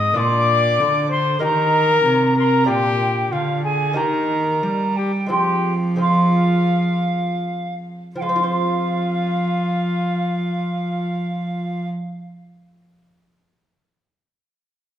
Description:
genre	classical, renaissance-style consort dance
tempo	80-96 BPM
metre	4/4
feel	straight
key	F dorian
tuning	A4 = 440 Hz
part	warm cornet	melody	0.0-11.9 s	F4 to Eb5	-23 LUFS	left 5 dB	none
part	alto recorder	second line	0.0-11.9 s	F5 to Eb6	-24 LUFS	right 2 dB	none
part	lute	accompaniment	0.0-12.7 s	Ab2 to C5	-24 LUFS	right 1 dB	none
part	rich cello	bass	0.0-11.9 s	Ab2 to G3	-21 LUFS	right 1 dB	none
room	wet recital hall reverb, RT60 1.7 s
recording	none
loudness	-17 LUFS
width	side -10 dB against mid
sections	0.0-8.2 A section; 8.2-11.1 B section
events	slowing down 1.4-8.2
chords	0.2 Bb; 1.4 Eb; 2.7 Bb; 4.0 Eb; 5.3 Fm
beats	| 0.17 0.79 1.42 2.05 | 2.68 3.32 3.96 4.62 | 5.30 6.00 6.70 7.42 | 8.16 8.90 9.64 10.39

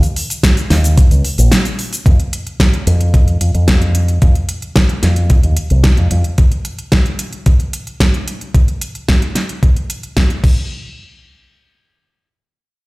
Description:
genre	nu-disco, nu disco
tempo	111 BPM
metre	4/4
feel	straight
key	unclear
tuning	A4 = 439 Hz
part	pop drum kit	drums	0.0-10.5 s	cabasa, crash cymbal, hi-hat, snare drum	-19 LUFS	equal	none
part	electronic kick drum	drums	0.4-10.5 s	none	-11 LUFS	equal	none
part	fingered electric bass with an envelope filter	bass	0.7-6.2 s	Bb1 to F2	-12 LUFS	equal	none
room	light reverb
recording	played on a big sound system in a bare room, large studio reverb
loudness	-11 LUFS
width	side -23 dB against mid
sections	0.0-2.1 A section; 2.1-10.7 B section; 10.7-12.9 C section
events	drop 0.0-2.1; break 1.5-2.1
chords	none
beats	0.43 0.98 1.52 | 2.06 2.60 3.14 3.68 | 4.22 4.76 5.30 5.84 | 6.38 6.92 7.46 8.00 | 8.54 9.08 9.62 10.16

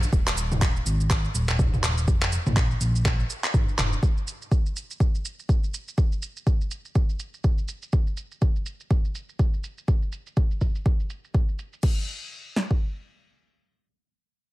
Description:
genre	afro house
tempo	123 BPM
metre	4/4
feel	swing 58% on 16ths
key	unclear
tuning	A4 = 440 Hz
part	smooth synth bass	bass	0.0-3.9 s	Eb1 to Bb1	-25 LUFS	equal	sidechain pumping
part	deep house drum kit	drums	0.0-11.9 s	crash cymbal, handclaps, shaker, toms	-29 LUFS	equal	overdrive, low-pass filter on snare, low-pass filter on toms, low-pass filter on perc, low-pass filter on hats, low-pass filter on cymbals, low-pass filter on room
part	deep house drum kit	drums	0.1-12.8 s	kick drum, snare drum	-22 LUFS	equal	overdrive
room	little or no reverb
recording	lossy compression artefacts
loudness	-23 LUFS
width	side -18 dB against mid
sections	0.0-11.8 A section; 11.8-14.5 B section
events	filter sweep on drum 0.0-11.8; filter sweep on analog synth bass 0.0-4.0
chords	none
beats	| 0.12 0.61 1.10 1.59 | 2.08 2.56 3.05 3.54 | 4.03 4.51 5.00 5.49 | 5.98 6.46 6.95 7.44 | 7.93 8.42 8.90 9.39 | 9.88 10.37 10.86 11.34 | 11.83 12.32

